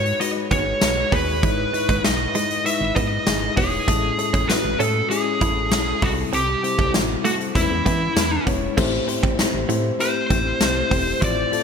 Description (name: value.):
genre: 1980s-style pop.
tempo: 98 BPM.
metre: 4/4.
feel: straight.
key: E major.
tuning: A4 = 438 Hz.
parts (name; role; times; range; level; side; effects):
fuzz lead guitar; melody; 0.0-11.6 s; E4 to E5; -23 LUFS; right 1 dB; distortion, shimmer reverb.
FM electric piano with soft pad layer; accompaniment; 0.0-11.6 s; G#2 to C#5; -26 LUFS; left 6 dB; chorus, tremolo, shimmer reverb.
solid FM bass; bass; 0.0-11.5 s; E1 to E3; -26 LUFS; right 1 dB; none.
big rock drum kit; drums; 0.1-11.6 s; crash cymbal, hi-hat, kick drum, snare drum, tambourine; -23 LUFS; equal; none.
direct-recorded clean electric guitar; riff; 0.5-11.6 s; E3 to E4; -30 LUFS; right 6 dB; analog chorus, shimmer reverb.
room: moderate plate reverb, RT60 1.7 s.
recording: bright 1980s-style digital production.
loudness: -18 LUFS.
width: side -6 dB against mid.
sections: 0.0-8.8 A section; 8.8-11.6 A section.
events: none.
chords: 0.0 G#m7; 1.4 Emaj7/G#; 3.9 Amaj7; 6.0 C6; 7.5 E6; 8.8 Am7.